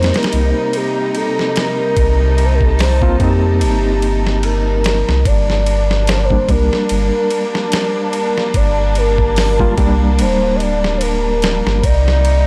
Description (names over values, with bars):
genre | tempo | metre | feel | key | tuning
trip hop | 73 BPM | 4/4 | swing 56% on 16ths | G minor | A4 = 442 Hz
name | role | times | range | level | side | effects
pure breathy sine lead | melody | 0.0-12.5 s | G4 to Eb5 | -21 LUFS | equal | chorus, tape echo
barky reed electric piano | accompaniment | 0.0-11.8 s | G3 to F4 | -24 LUFS | equal | overdrive, fast tremolo, vintage 12-bit sampler grit, tape echo
muted studio string section | sustained chords | 0.0-12.5 s | C3 to A5 | -25 LUFS | equal | vintage 12-bit sampler grit
warm sub bass | bass | 0.0-12.5 s | D1 to F2 | -18 LUFS | equal | none
dusty soul sampler-style drum kit | drums | 0.0-12.5 s | hi-hat, kick drum, ride cymbal, snare drum | -22 LUFS | equal | studio reverb
room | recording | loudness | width
little or no reverb | dry, gritty hardware recording | -15 LUFS | mono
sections
0.0-5.3 A section; 5.3-12.5 B section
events
none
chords
0.0 Cm7; 5.3 Gm; 11.8 Cm7